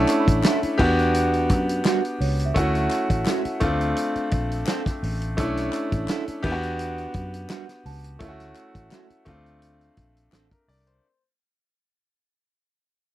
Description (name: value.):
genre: lush 1970s-style soul.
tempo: 85 BPM.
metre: 4/4.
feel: swing 54% on 16ths.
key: unclear.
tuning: A4 = 440 Hz.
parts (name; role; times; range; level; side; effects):
clear baby grand piano; accompaniment; 0.0-11.2 s; A3 to D5; -24 LUFS; equal; none.
vintage muted fingered electric bass; bass; 0.0-11.0 s; A1 to F#2; -27 LUFS; equal; none.
small celesta; texture; 0.0-9.6 s; C#5 to B5; -36 LUFS; right 10 dB; stereo widening.
warm soul drum kit; drums; 0.1-11.0 s; crash cymbal, hi-hat, kick drum, snare drum; -25 LUFS; equal; none.
group handclap; percussion; 0.1-10.5 s; none; -36 LUFS; left 8 dB; none.
electric guitar through a small old amp; riff; 0.4-10.5 s; G3 to A4; -26 LUFS; right 7 dB; none.
room: little or no reverb.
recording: dry, close 1970s-style studio recording.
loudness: -21 LUFS.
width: side -14 dB against mid.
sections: 0.0-11.0 A section.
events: fade-out 0.0-11.0.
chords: 0.0 Bm11; 0.8 Em9; 2.6 Dmaj7; 3.6 Bbmaj9; 5.4 Bm11; 6.4 Em9; 8.2 Dmaj7; 9.3 Bbmaj9.